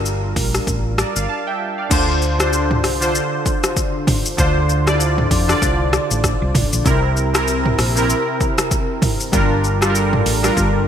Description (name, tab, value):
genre	afrobeats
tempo	97 BPM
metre	4/4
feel	swing 58% on 16ths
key	D minor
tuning	A4 = 440 Hz
part	warm analog keys	accompaniment	0.0-10.9 s	C3 to A5	-19 LUFS	equal	chorus
part	hollow-body short-scale fingered electric bass	bass	0.0-10.9 s	G1 to F2	-20 LUFS	equal	none
part	deep house drum kit	drums	0.1-10.7 s	crash cymbal, hi-hat, kick drum, rim click, shaker, toms	-19 LUFS	equal	overdrive
room	light reverb, digital ambience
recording	bright 1980s-style digital production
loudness	-15 LUFS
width	side -9 dB against mid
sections	0.0-1.9 A section; 1.9-10.9 B section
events	break 1.3-1.9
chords	0.0 Gm7; 1.9 Dm7; 6.9 C7; 9.3 Gm7